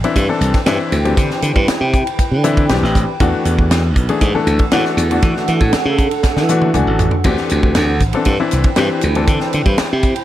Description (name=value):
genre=electric jazz fusion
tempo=119 BPM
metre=4/4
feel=straight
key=unclear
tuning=A4 = 440 Hz
part: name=warm grand piano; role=accompaniment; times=0.0-9.9 s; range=E3 to G#5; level=-18 LUFS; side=left 4 dB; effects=none
part: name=granular cloud pad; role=sustained chords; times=0.0-10.2 s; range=D4 to G5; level=-23 LUFS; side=right 3 dB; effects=built-in reverb
part: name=tight funk drum kit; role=drums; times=0.0-10.2 s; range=crash cymbal, hi-hat, kick drum, ride cymbal, snare drum, toms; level=-18 LUFS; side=equal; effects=none
part: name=glassy slap bass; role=bass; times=0.2-10.1 s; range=A1 to E3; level=-16 LUFS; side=equal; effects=none
room=studio reverb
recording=none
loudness=-13 LUFS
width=side -13 dB against mid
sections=0.0-10.2 A section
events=drum fill 6.2-7.3; grand piano fill 6.5-7.3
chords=0.0 D9sus4; 3.2 E9sus4; 7.3 D9sus4